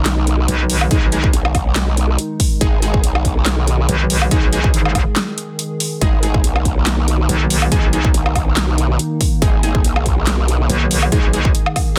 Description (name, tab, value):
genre	heavy wobble dubstep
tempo	141 BPM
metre	4/4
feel	swing 55% on 16ths, half-time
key	G# minor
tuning	A4 = 443 Hz
part	evolving wavetable pad	sustained chords	0.0-12.0 s	D#3 to G#4	-27 LUFS	equal	chorus, built-in reverb, sidechain pumping
part	orchestra-hit-like synth stab	stabs	0.0-12.0 s	G#3 to G#4	-26 LUFS	equal	built-in reverb, delay
part	growl bass	bass	0.0-10.7 s	G#1 to B1	-19 LUFS	equal	chorus, overdrive
part	dubstep drum kit	drums	0.1-11.9 s	handclaps, hi-hat, snare drum, woodblock	-23 LUFS	equal	none
part	metallic wobble bass	bass	0.5-1.3, 3.9-8.1, 10.7-11.5 s	G#1 to B1	-19 LUFS	equal	chorus, overdrive
part	electronic kick drum	drums	0.9-11.9 s	none	-19 LUFS	equal	none
room	little or no reverb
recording	dense, heavily limited modern master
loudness	-16 LUFS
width	mono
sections	0.0-12.0 A section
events	break 5.2-6.0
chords	0.0 G#5